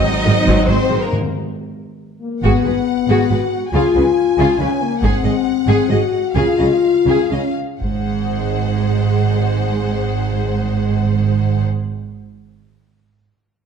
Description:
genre	cinematic, epic orchestral film score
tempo	117-141 BPM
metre	3/4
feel	straight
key	unclear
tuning	A4 = 440 Hz
part	rich symphonic violin section	melody	0.0-11.6 s	A#4 to G#5	-25 LUFS	left 4 dB	none
part	rich symphonic violin section	second line	0.0-11.6 s	A#3 to D#5	-26 LUFS	left 2 dB	none
part	warm symphonic viola section	accompaniment	0.0-11.6 s	D#3 to G#4	-25 LUFS	right 2 dB	none
part	dark trombone section	sustained chords	0.0-1.1 s	F#3 to B#3	-24 LUFS	right 4 dB	none
part	mellow French horn section	sustained chords	0.0-11.6 s	G#3 to F#4	-19 LUFS	left 6 dB	none
part	warm symphonic string section	sustained chords	0.0-1.1 s	D#4 to F#5	-28 LUFS	equal	none
part	timpani	percussion	0.0-1.7 s	G#2	-25 LUFS	equal	none
part	rich symphonic cello section	bass	0.3-11.6 s	G#2 to C#3	-21 LUFS	right 4 dB	none
part	warm studio double bass section	bass	0.3-11.6 s	G#1 to C#2	-21 LUFS	right 5 dB	none
part	taiko ensemble	drums	0.5-8.8 s	none	-22 LUFS	equal	none
room	moderate recital hall reverb, RT60 1.4 s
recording	dark, warm production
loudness	-14 LUFS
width	side -6 dB against mid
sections	0.0-2.4 A section; 2.4-7.8 B section; 7.8-10.9 C section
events	break 1.1-2.4; drum fill 1.8-2.4; slowing down 4.4-7.8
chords	0.0 G#7; 1.1 N.C.; 2.4 G#m7; 3.7 C#; 5.0 G#7; 6.4 C#; 7.8 G#7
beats	0.26 0.69 | 1.12 1.56 2.00 | 2.44 2.88 3.31 | 3.74 4.17 4.59 | 5.02 5.46 5.90 | 6.35 6.82 7.31 | 7.81 8.32 8.83 | 9.34 9.85 10.35

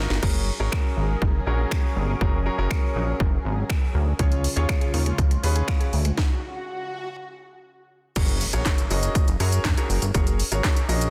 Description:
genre	dance-pop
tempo	121 BPM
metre	4/4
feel	straight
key	F# major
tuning	A4 = 441 Hz
part	clear concert grand piano	accompaniment	0.0-11.1 s	C#4 to D#5	-32 LUFS	equal	sidechain pumping
part	chorused synth bass	bass	0.0-11.1 s	F#1 to F#2	-26 LUFS	equal	sidechain pumping
part	house drum kit	drums	0.1-11.1 s	crash cymbal, finger snaps, handclaps, hi-hat, kick drum, shaker, snare drum	-26 LUFS	equal	overdrive
part	lush unison pad	sustained chords	0.2-6.2 s	C#3 to A#4	-36 LUFS	equal	chorus, phaser, sidechain pumping
part	mallet-like synth pluck	arpeggios	4.2-6.2 s	E#3 to E#5	-39 LUFS	equal	chorus, sidechain pumping, delay
part	swell and impact	sound effects	5.9-10.1 s	none	-38 LUFS	equal	none
room	little or no reverb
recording	dense, heavily limited modern master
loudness	-23 LUFS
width	mono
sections	0.2-8.2 A section; 8.2-11.1 B section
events	drum fill 0.0; swell 5.9-8.2; stop 6.2-8.2; impact 8.2-10.1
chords	0.2 F#add9; 4.2 C#; 8.2 F#add9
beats	| 0.23 0.72 1.22 1.71 | 2.21 2.71 3.20 3.70 | 4.19 4.69 5.19 5.68 | 6.18 6.67 7.17 7.67 | 8.16 8.66 9.15 9.65 | 10.14 10.64

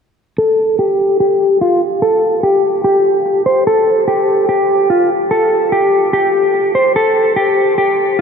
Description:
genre	hip hop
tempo	146 BPM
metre	4/4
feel	half-time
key	unclear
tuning	A4 = 442 Hz
part	mellow electric guitar	melody	0.4-8.2 s	F4 to C5	-11 LUFS	equal	low-pass filter, analog delay
room	wet huge ambient reverb, RT60 7.6 s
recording	dreamy mix soaked in reverb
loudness	-11 LUFS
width	side -6 dB against mid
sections	0.4-8.2 A section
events	filter sweep on clean electric guitar 0.4-8.2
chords	none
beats	| 0.38 0.79 1.20 1.61 | 2.02 2.43 2.84 3.25 | 3.67 4.08 4.49 4.90 | 5.31 5.72 6.13 6.54 | 6.95 7.37 7.78 8.19

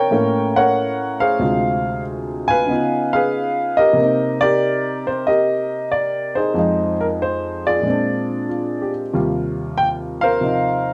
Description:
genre	jazz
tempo	93 BPM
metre	4/4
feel	swing 68% on 8ths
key	C minor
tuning	A4 = 440 Hz
part	warm upright piano	solo	0.0-10.9 s	D2 to Ab5	-19 LUFS	equal	none
room	light reverb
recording	dark, warm production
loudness	-19 LUFS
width	mono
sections	0.0-9.1 A section; 9.1-10.9 B section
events	none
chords	0.1 A; 1.4 Dm7b5; 2.7 Db9; 4.0 Cm9; 6.6 Fm7; 7.9 Bb9; 9.1 Eb69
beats	0.12 0.76 | 1.41 2.05 2.70 3.34 | 3.99 4.63 5.28 5.92 | 6.57 7.21 7.85 8.50 | 9.14 9.78 10.43

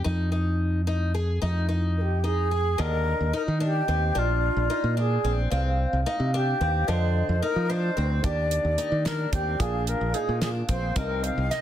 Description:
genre	progressive instrumental, band music in an uneven meter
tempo	220 BPM (eighths)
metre	5/8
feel	straight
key	F dorian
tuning	A4 = 440 Hz
part	picked twelve-string acoustic guitar	arpeggios	0.0-11.6 s	D3 to Ab4	-32 LUFS	left 4 dB	none
part	modern bright fingered electric bass	bass	0.0-11.5 s	Bb1 to F3	-25 LUFS	equal	none
part	breathy mellow wooden flute	melody	2.0-11.6 s	F4 to F5	-28 LUFS	equal	tape echo
part	vibraphone with medium mallets	second line	2.8-11.6 s	D5 to F5	-34 LUFS	right 2 dB	tape echo
part	dark baby grand piano	accompaniment	8.2-11.6 s	Bb2 to Bb4	-37 LUFS	right 2 dB	none
part	damped 70s drum kit	drums	8.2-11.6 s	hi-hat, kick drum, snare drum	-28 LUFS	equal	none
room	moderate studio reverb, RT60 0.6 s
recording	dense, heavily limited modern master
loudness	-23 LUFS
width	side -11 dB against mid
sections	0.0-2.8 A section; 2.8-11.6 B section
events	none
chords	0.1 Fm7; 2.8 Ebmaj7; 4.2 Bb; 5.5 Cm; 6.9 F5; 8.2 Ebmaj7; 9.6 Bb7; 11.0 Cm7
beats	| 0.05 0.33 0.60 0.87 1.15 | 1.42 1.70 1.97 2.24 2.52 | 2.79 3.06 3.33 3.61 3.88 | 4.15 4.43 4.70 4.97 5.24 | 5.52 5.79 6.06 6.33 6.61 | 6.88 7.15 7.42 7.70 7.97 | 8.24 8.51 8.78 9.06 9.33 | 9.60 9.87 10.15 10.42 10.69 | 10.96 11.24 11.51

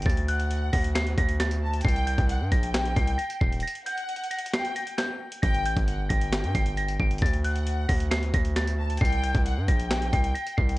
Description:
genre	hip hop, trap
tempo	134 BPM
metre	4/4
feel	half-time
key	G harmonic minor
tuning	A4 = 444 Hz
part	delicate synth tine bell	melody	0.0-10.8 s	F#6 to D7	-32 LUFS	equal	chorus, phaser, digital delay
part	distorted 808-style bass	bass	0.0-10.8 s	Eb1 to G2	-27 LUFS	equal	distortion
part	breakbeat sampler-style drum kit	drums	0.0-10.8 s	handclaps, hi-hat, kick drum, snare drum	-27 LUFS	equal	none
part	warm studio violin section	second line	0.3-10.8 s	F#5 to A5	-33 LUFS	left 2 dB	digital delay
room	digital ambience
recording	worn, warbling old tape, cassette tape, warbly pitch drift, nothing above 10.4 kHz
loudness	-23 LUFS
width	side -19 dB against mid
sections	0.0-5.4 A section; 5.4-10.8 A section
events	break 3.6-5.4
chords	0.1 D; 1.8 Cm; 3.6 N.C.; 5.4 Gm; 7.2 D; 9.0 C5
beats	| 0.06 0.50 0.95 1.40 | 1.85 2.29 2.74 3.19 | 3.64 4.09 4.53 4.98 | 5.43 5.88 6.33 6.77 | 7.22 7.67 8.12 8.56 | 9.01 9.46 9.91 10.36

